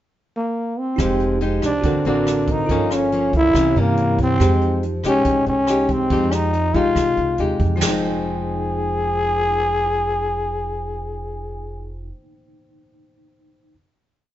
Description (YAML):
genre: bossa nova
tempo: 141 BPM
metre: 4/4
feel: straight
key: F minor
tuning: A4 = 439 Hz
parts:
  - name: growling trombone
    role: melody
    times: 0.4-12.0 s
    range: Bb3 to Ab4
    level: -20 LUFS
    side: left 1 dB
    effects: none
  - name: bell-like tine electric piano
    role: accompaniment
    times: 1.0-13.7 s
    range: Eb4 to G5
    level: -29 LUFS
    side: right 3 dB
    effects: medium stereo tremolo
  - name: nylon-string guitar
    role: accompaniment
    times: 1.0-12.2 s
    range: G2 to G4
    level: -24 LUFS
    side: left 2 dB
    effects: none
  - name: upright bass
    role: bass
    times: 1.0-12.1 s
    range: F1 to G2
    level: -25 LUFS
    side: right 1 dB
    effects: none
  - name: jazz brush drum kit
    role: drums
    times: 1.0-7.9 s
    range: china cymbal, hi-hat, kick drum, rim click, snare drum, toms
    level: -25 LUFS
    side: right 1 dB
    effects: none
room: moderate stone room reverb, RT60 0.9 s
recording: band playing live in one room, nothing above 7.7 kHz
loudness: -17 LUFS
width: side -12 dB against mid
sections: 0.0-1.0 pickup bar; 1.0-7.8 A section; 7.8-11.2 final chord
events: none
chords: 0.0 N.C.; 1.0 Fm9; 1.8 D7b13; 2.7 Gm7b5; 3.5 C7b9; 4.4 Fm9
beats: 0.13 0.56 | 0.99 1.41 1.84 2.27 | 2.69 3.12 3.55 3.98 | 4.40 4.83 5.26 5.68 | 6.11 6.54 6.97 7.39 | 7.82 8.24 8.67 9.10 | 9.52 9.95 10.38 10.80